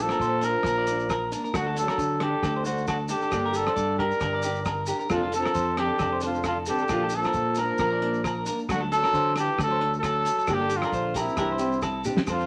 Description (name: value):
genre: highlife guitar band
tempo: 134 BPM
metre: 4/4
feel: swing 55% on 16ths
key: unclear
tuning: A4 = 440 Hz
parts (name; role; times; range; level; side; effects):
- warm trumpet; melody; 0.0-12.5 s; E4 to Bb4; -29 LUFS; equal; none
- breathy trombone; second line; 0.0-12.0 s; C3 to G3; -36 LUFS; equal; none
- nylon-string guitar; accompaniment; 0.0-12.4 s; E3 to A4; -35 LUFS; equal; none
- clean electric guitar; arpeggios; 0.0-12.5 s; F4 to D5; -34 LUFS; equal; warbly pitch drift
- fingered electric bass; bass; 0.0-12.4 s; F1 to D3; -35 LUFS; equal; none
- cloth-damped thuddy drum kit; drums; 0.1-12.4 s; hi-hat, kick drum, rim click, snare drum, toms; -34 LUFS; equal; none
- agogo bells; percussion; 0.1-12.4 s; none; -42 LUFS; equal; none
- maracas; percussion; 0.1-12.4 s; none; -44 LUFS; equal; none
room: moderate studio reverb, RT60 0.7 s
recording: none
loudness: -26 LUFS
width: mono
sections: 0.0-12.3 A section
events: drum fill 12.1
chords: 0.0 Bb; 1.5 D; 3.3 Gm; 5.1 F6; 6.9 Bb; 8.7 D; 10.5 Gm; 11.4 Cadd9